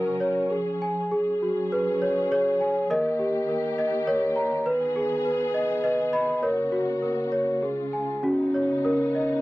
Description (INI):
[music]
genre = children's music, lullaby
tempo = 101 BPM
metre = 3/4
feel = rubato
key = F# major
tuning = A4 = 443 Hz
[part]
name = large celesta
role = melody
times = 0.0-9.4 s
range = C#4 to B5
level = -23 LUFS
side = equal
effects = none
[part]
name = muted studio string section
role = sustained chords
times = 0.0-9.4 s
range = C#3 to A#4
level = -33 LUFS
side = left 1 dB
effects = none
[sound]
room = light reverb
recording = dry, close 1970s-style studio recording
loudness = -23 LUFS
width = side -18 dB against mid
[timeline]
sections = 0.0-1.1 A section; 1.1-9.4 A section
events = none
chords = 0.0 F#/C#; 0.5 C#; 1.1 F#sus2; 2.9 D#; 4.7 G#m; 6.4 F#/C#; 7.6 C#; 8.2 Badd9